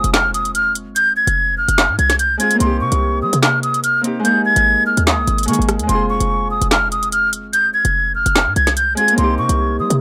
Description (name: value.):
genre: hip hop, drill.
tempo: 146 BPM.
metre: 4/4.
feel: half-time.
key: F minor.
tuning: A4 = 444 Hz.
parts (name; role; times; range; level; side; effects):
silver concert flute; melody; 0.0-10.0 s; C6 to Ab6; -18 LUFS; equal; none.
Celtic harp; accompaniment; 0.0-10.0 s; Ab3 to Ab4; -24 LUFS; equal; none.
short 808-style bass; bass; 0.0-10.0 s; F1 to G3; -22 LUFS; equal; none.
drill drum kit; drums; 0.0-10.0 s; handclaps, hi-hat, rim click, snare drum; -21 LUFS; equal; none.
room: small room ambience.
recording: dry, gritty hardware recording.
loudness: -16 LUFS.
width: mono.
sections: 0.0-10.0 A section.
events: none.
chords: 0.0 Fm; 2.6 Cm7; 4.2 Absus2; 5.9 Fm; 9.2 Cm7.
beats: 0.14 0.55 | 0.96 1.37 1.78 2.19 | 2.60 3.01 3.42 3.84 | 4.25 4.66 5.07 5.48 | 5.89 6.30 6.71 7.12 | 7.54 7.95 8.36 8.77 | 9.18 9.59 10.00.